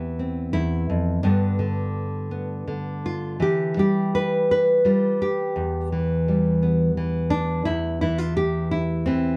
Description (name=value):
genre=folk, solo fingerstyle acoustic guitar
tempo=85 BPM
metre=3/4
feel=rubato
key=unclear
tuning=A4 = 440 Hz
part: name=nylon-string guitar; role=solo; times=0.0-9.4 s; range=E2 to B4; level=-23 LUFS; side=equal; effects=none
room=moderate studio reverb, RT60 0.6 s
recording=dark, warm production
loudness=-23 LUFS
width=mono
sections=0.0-9.4 A section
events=none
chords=0.0 Cmaj7/E; 1.2 G; 3.4 Em7; 7.7 C/E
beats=0.52 | 1.23 1.94 2.67 | 3.40 4.13 4.85 | 5.56 6.27 6.97 | 7.66 8.36 9.06